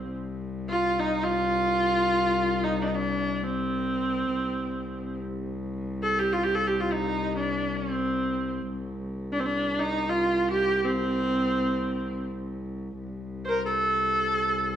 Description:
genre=Turkish makam ensemble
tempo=free time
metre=none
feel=none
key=C makam huseyni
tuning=A4 = 440 Hz
part: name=clear viola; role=melody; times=0.0-14.8 s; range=C4 to C5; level=-25 LUFS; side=right 1 dB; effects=none
part: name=warm cello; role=drone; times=0.0-14.8 s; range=C2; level=-32 LUFS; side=left 2 dB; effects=none
room=moderate scoring stage reverb, RT60 1.8 s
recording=dark, warm production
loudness=-25 LUFS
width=side -10 dB against mid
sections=0.0-13.0 A section; 13.0-14.8 A section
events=none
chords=none

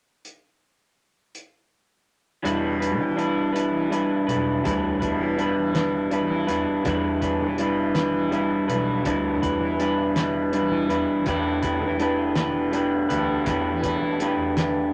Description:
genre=psychedelic rock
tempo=54 BPM (dotted quarters)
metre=6/8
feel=straight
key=E minor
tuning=A4 = 440 Hz
part: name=cloth-damped thuddy drum kit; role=drums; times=0.2-14.7 s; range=hi-hat, kick drum, snare drum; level=-33 LUFS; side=equal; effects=none
part: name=electric guitar through a small old amp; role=riff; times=2.4-14.9 s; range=E3 to B4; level=-25 LUFS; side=equal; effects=none
part: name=fuzz picked electric bass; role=bass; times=2.4-14.3 s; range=B1 to E3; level=-32 LUFS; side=equal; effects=overdrive
part: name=tanpura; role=drone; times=2.5-14.9 s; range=E2 to E3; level=-34 LUFS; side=equal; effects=none
room=moderate club reverb, RT60 0.7 s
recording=none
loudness=-24 LUFS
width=mono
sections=0.2-2.4 A section; 2.4-14.9 B section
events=none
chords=0.2 N.C.; 2.4 Em7; 11.3 Gadd9

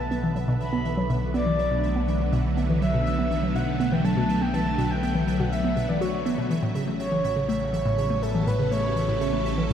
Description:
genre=ambient, sequencer-driven space music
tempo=122 BPM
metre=4/4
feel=straight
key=B minor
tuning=A4 = 440 Hz
part: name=breathy flute-like synth lead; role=melody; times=0.0-9.7 s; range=A4 to B5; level=-29 LUFS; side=equal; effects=lush chorus, shimmer reverb, tape echo
part: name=phased string machine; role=sustained chords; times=0.0-9.7 s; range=C#3 to A4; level=-28 LUFS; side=equal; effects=ensemble chorus, phaser, shimmer reverb
part: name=fat analog bass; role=bass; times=0.0-9.7 s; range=A1 to B1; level=-29 LUFS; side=equal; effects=none
part: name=pulsing gated texture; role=texture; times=0.0-9.7 s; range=E5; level=-41 LUFS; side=right 3 dB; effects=chorus, built-in reverb, shimmer reverb
part: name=hollow square pluck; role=riff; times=0.1-9.7 s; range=A2 to F#4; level=-27 LUFS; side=equal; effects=chorus, shimmer reverb, tape echo
room=moderate plate reverb, RT60 3.4 s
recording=none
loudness=-22 LUFS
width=side -9 dB against mid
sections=0.0-9.7 A section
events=filter sweep on synth arpeggio sound 0.0-9.7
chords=0.0 Bm7; 6.5 A13

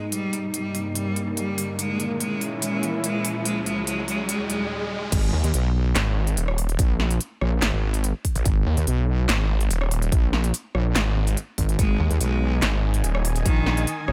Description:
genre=heavy wobble dubstep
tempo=144 BPM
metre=4/4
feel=half-time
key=G# harmonic minor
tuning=A4 = 440 Hz
part: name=clear cello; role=melody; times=0.0-4.7, 11.8-14.1 s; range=D#3 to G#3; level=-30 LUFS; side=equal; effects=digital delay
part: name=lush unison pad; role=sustained chords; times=0.0-4.7, 12.5-14.1 s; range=C#2 to G#5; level=-33 LUFS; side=equal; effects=chorus, sidechain pumping
part: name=riser and swell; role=sound effects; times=0.5-5.1 s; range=none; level=-36 LUFS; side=equal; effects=none
part: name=big-room dance drum kit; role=drums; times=0.1-14.1 s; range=crash cymbal, handclaps, hi-hat, rim click, snare drum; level=-30 LUFS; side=equal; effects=overdrive
part: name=wobble bass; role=bass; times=5.1-14.1 s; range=G#1 to D#2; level=-24 LUFS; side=equal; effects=chorus, overdrive
part: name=electronic kick drum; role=drums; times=5.1-13.5 s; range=none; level=-24 LUFS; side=equal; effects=none
part: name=snarling distorted saw bass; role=bass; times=5.3-13.4 s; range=D#1 to D#2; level=-25 LUFS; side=equal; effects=distortion, overdrive
room=digital ambience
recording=none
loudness=-24 LUFS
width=mono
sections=0.0-5.1 A section; 5.1-14.1 B section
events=build-up 0.0-5.1; filter sweep on analog synth pad 0.0-5.1; riser 0.6-5.1; swell 4.3-5.1; drop 5.1-14.1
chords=0.1 D#/G; 1.8 A#dim; 3.5 C#m; 4.3 D#sus4; 5.1 G#5

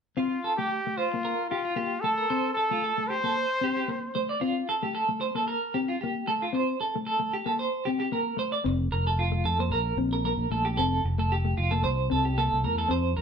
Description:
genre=highlife guitar band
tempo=113 BPM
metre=4/4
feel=straight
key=F major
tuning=A4 = 439 Hz
part: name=clear trumpet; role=melody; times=0.2-4.1 s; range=F4 to C5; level=-28 LUFS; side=left 1 dB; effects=none
part: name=mellow electric guitar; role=accompaniment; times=0.2-13.1 s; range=A3 to F4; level=-32 LUFS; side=left 4 dB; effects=warbly pitch drift
part: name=semi-hollow electric guitar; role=arpeggios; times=0.2-13.2 s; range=F4 to D5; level=-28 LUFS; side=right 3 dB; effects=tremolo
part: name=fingered electric bass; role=bass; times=8.7-13.2 s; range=F1 to F2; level=-27 LUFS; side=equal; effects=none
room=moderate studio reverb, RT60 0.7 s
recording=band playing live in one room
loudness=-25 LUFS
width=side -6 dB against mid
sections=0.2-8.7 A section; 8.7-13.2 B section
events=none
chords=0.2 F; 1.2 Bb5; 2.3 F (rootless); 3.4 C5; 4.4 F; 6.5 Am7; 7.6 C5; 8.7 F; 9.7 Bbsus2; 10.8 F; 11.8 C

